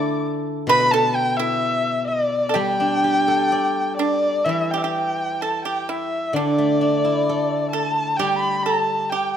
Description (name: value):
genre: chinese traditional, Chinese chamber ensemble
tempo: 64 BPM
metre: 2/4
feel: rubato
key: G gong mode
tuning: A4 = 441 Hz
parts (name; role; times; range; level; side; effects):
- dark erhu; melody; 0.0-9.4 s; D5 to D6; -21 LUFS; left 1 dB; none
- pipa; second line; 0.0-9.4 s; D4 to D5; -24 LUFS; right 5 dB; none
- steel-string zither; accompaniment; 0.0-9.4 s; B2 to D5; -24 LUFS; left 2 dB; none
room: moderate scoring stage reverb, RT60 1.6 s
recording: close, detailed microphones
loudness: -18 LUFS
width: side -9 dB against mid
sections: 0.0-4.5 A section; 4.5-9.4 B section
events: none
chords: none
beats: | 0.69 1.62 | 2.56 3.52 | 4.48 5.42 | 6.36 7.28 | 8.20 9.14